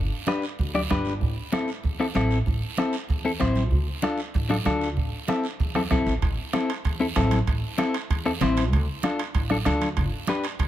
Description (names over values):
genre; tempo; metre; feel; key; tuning
latin, cumbia; 192 BPM; 4/4; straight; A minor; A4 = 440 Hz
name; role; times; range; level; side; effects
upright bass; bass; 0.0-10.7 s; G1 to E2; -27 LUFS; equal; none
clean electric guitar; accompaniment; 0.3-10.5 s; C4 to D5; -26 LUFS; left 3 dB; none
bombo; percussion; 0.3-10.7 s; none; -28 LUFS; right 2 dB; none
congas; percussion; 0.3-10.7 s; none; -32 LUFS; right 3 dB; none
guiro; percussion; 0.3-10.7 s; none; -38 LUFS; right 7 dB; none
timbales; percussion; 6.2-10.7 s; none; -35 LUFS; right 6 dB; none
room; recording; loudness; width
light reverb; none; -22 LUFS; side -12 dB against mid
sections
0.0-6.2 A section; 6.2-10.7 A section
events
none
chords
0.0 G; 1.2 Am; 3.7 Dm; 5.0 Am; 8.7 Dm; 10.0 G